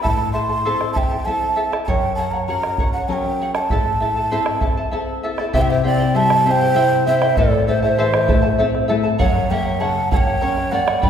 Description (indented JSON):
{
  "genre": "andean folk, Andean ensemble",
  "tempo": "98 BPM",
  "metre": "3/4",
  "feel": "straight",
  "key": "A dorian",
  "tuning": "A4 = 437 Hz",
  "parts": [
    { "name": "breathy mellow large quena", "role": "melody", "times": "0.0-11.1 s", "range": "D5 to C6", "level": "-21 LUFS", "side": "right 2 dB", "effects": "none" },
    { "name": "charango", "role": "accompaniment", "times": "0.0-11.1 s", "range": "E4 to B5", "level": "-24 LUFS", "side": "equal", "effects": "none" },
    { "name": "bombo", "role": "percussion", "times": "0.0-11.1 s", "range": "none", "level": "-23 LUFS", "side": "right 1 dB", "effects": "none" },
    { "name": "nylon-string guitar", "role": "accompaniment", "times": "0.1-11.1 s", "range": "F#2 to A#4", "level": "-22 LUFS", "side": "left 3 dB", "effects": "none" },
    { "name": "polished pan flute", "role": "second line", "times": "5.6-11.1 s", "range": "A4 to F#5", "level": "-22 LUFS", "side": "right 1 dB", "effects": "none" }
  ],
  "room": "wet recital hall reverb, RT60 1.6 s",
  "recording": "recorded in a church or concert hall",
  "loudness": "-16 LUFS",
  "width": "side -8 dB against mid",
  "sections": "0.0-5.5 A section; 5.5-11.1 B section",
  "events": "none",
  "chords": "0.0 Am; 1.9 F#; 3.7 Am; 5.5 C; 7.4 Am; 9.2 F#",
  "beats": "| 0.05 0.66 1.27 | 1.88 2.49 3.10 | 3.71 4.32 4.93 | 5.54 6.15 6.76 | 7.37 7.98 8.59 | 9.20 9.80 10.41 | 11.02"
}